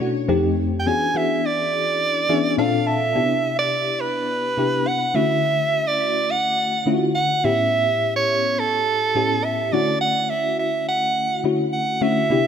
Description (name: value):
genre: pop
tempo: 105 BPM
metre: 4/4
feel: straight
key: unclear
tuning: A4 = 440 Hz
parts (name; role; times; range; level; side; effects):
- bell-like FM electric piano; accompaniment; 0.0-12.5 s; F2 to A5; -22 LUFS; left 2 dB; tremolo, analog chorus
- edgy soprano saxophone; melody; 0.8-12.5 s; A4 to G#5; -20 LUFS; right 3 dB; none
room: light reverb, small room ambience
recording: none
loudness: -18 LUFS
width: side -8 dB against mid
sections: 0.0-3.1 A section; 3.1-12.5 B section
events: FM electric piano fill 2.0-3.1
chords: 0.3 F9; 0.9 E13; 2.6 Bbmaj9; 3.1 Cmaj7; 5.2 Dmaj7; 7.4 A7; 9.7 Dmaj7